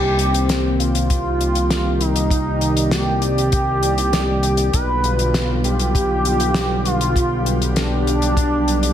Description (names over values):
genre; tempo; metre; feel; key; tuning
synthwave; 99 BPM; 4/4; straight; C minor; A4 = 441 Hz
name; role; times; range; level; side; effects
wide unison lead; melody; 0.0-8.9 s; D4 to B4; -21 LUFS; equal; cassette tape, tape echo, shimmer reverb
warm analog pad; sustained chords; 0.0-8.9 s; D3 to D5; -24 LUFS; equal; chorus, sidechain pumping, shimmer reverb
fat analog bass; bass; 0.0-8.9 s; B1 to C2; -20 LUFS; equal; sidechain pumping
damped 70s drum kit; drums; 0.2-8.9 s; hi-hat, snare drum; -24 LUFS; left 2 dB; studio reverb, gated reverb
kick drum; drums; 1.1-8.5 s; none; -21 LUFS; equal; studio reverb
room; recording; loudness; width
light reverb, studio reverb; none; -16 LUFS; side -10 dB against mid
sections
0.0-8.9 A section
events
none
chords
0.0 Cm7; 4.7 G7/B